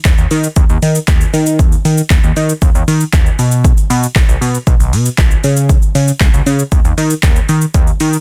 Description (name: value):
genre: dance-pop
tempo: 117 BPM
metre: 4/4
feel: straight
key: unclear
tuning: A4 = 442 Hz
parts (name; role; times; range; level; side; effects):
- fat analog bass; bass; 0.1-8.2 s; Cb2 to Eb3; -15 LUFS; equal; sidechain pumping
- punchy analog drum machine; drums; 0.1-8.2 s; handclaps, hi-hat, kick drum, shaker; -14 LUFS; equal; overdrive
room: little or no reverb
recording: dense, heavily limited modern master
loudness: -12 LUFS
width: mono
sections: 0.0-7.7 A section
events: none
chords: none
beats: 0.05 0.57 1.08 | 1.59 2.10 2.62 3.13 | 3.64 4.16 4.67 5.18 | 5.70 6.21 6.72 7.23 | 7.75